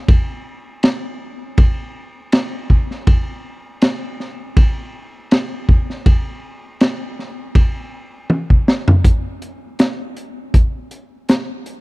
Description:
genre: blues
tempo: 80 BPM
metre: 4/4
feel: swing 55% on 16ths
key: none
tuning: none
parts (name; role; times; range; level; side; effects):
- crunchy breakbeat drum kit; drums; 0.1-11.8 s; hi-hat, kick drum, ride cymbal, snare drum, toms; -14 LUFS; equal; none
room: little or no reverb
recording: dry, close 1970s-style studio recording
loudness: -14 LUFS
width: side -22 dB against mid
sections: 0.0-9.1 A section; 9.1-11.8 B section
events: drum fill 8.3-9.1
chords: none

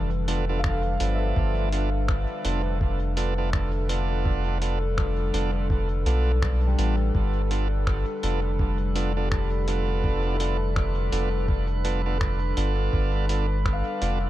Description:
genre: ambient dub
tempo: 83 BPM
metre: 4/4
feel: swing 59% on 16ths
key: G mixolydian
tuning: A4 = 442 Hz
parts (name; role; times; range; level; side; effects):
- warbly tape-like pad; sustained chords; 0.0-14.3 s; D3 to B4; -32 LUFS; left 1 dB; chorus, built-in reverb
- concert harp; arpeggios; 0.0-14.3 s; E3 to F5; -37 LUFS; left 5 dB; dub echo
- soft dub sub bass; bass; 0.0-14.3 s; F1 to B1; -25 LUFS; equal; none
- bright tonewheel organ; stabs; 0.3-14.2 s; F3 to A4; -31 LUFS; right 4 dB; overdrive, stopped rotary speaker, dub echo
- lo-fi sampler-style drum kit; drums; 0.3-14.2 s; finger snaps, hi-hat; -36 LUFS; equal; overdrive, dub echo
- electronic kick drum; drums; 0.6-13.8 s; none; -26 LUFS; equal; overdrive
- drifting glass-harmonics texture; texture; 8.1-14.3 s; B4; -38 LUFS; right 5 dB; chorus, built-in reverb
room: digital ambience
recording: none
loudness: -22 LUFS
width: side -14 dB against mid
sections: 0.0-14.3 A section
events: none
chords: 0.0 G7

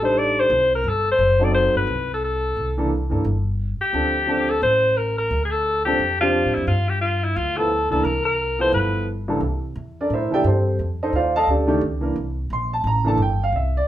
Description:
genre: jazz, small-group swing and bop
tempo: 175 BPM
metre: 4/4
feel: swing 62% on 8ths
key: C mixolydian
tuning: A4 = 438 Hz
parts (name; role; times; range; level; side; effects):
- bright alto saxophone; melody; 0.0-9.1 s; E4 to D5; -20 LUFS; left 2 dB; none
- warm upright piano; accompaniment; 0.0-13.9 s; C2 to C6; -22 LUFS; right 1 dB; none
- upright bass; bass; 0.0-13.9 s; F#1 to A2; -24 LUFS; equal; none
room: wet club reverb, RT60 0.7 s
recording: heard from further back in the room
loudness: -18 LUFS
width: side -12 dB against mid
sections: 0.0-9.4 A section; 9.4-13.9 B section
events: none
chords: 0.0 F13 (rootless); 1.2 F#dim7; 2.6 C13; 3.9 Dm7; 6.7 G7sus2; 8.0 C6; 8.7 G13; 9.4 C13; 10.8 F13; 12.2 C13

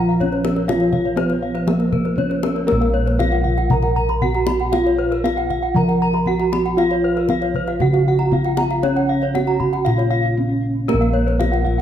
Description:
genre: Balinese gamelan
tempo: 117 BPM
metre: 4/4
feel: straight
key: Bb pelog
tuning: A4 = 440 Hz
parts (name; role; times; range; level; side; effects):
- gamelan-type bronze metallophone; melody; 0.0-11.8 s; Bb3 to Bb4; -22 LUFS; right 2 dB; none
- gamelan-type bronze metallophone; accompaniment; 0.0-2.7, 10.9-11.8 s; F3 to Bb3; -28 LUFS; right 2 dB; none
- gamelan-type bronze metallophone; arpeggios; 0.0-11.8 s; Bb4 to Cb6+35c; -24 LUFS; left 5 dB; tape echo
- gamelan-type bossed gongs; bass; 0.0-11.8 s; Bb1 to Bb4; -19 LUFS; equal; none
- gamelan-type bronze metallophone; arpeggios; 0.1-11.8 s; Bb4 to Cb6+35c; -27 LUFS; right 6 dB; none
- kendang; percussion; 0.2-11.8 s; none; -26 LUFS; left 2 dB; none
room: moderate recital hall reverb, RT60 1.5 s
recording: dark, warm production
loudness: -16 LUFS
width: side -10 dB against mid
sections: 0.0-2.7 A section; 2.7-11.8 B section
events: drum fill 10.2-10.9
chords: none

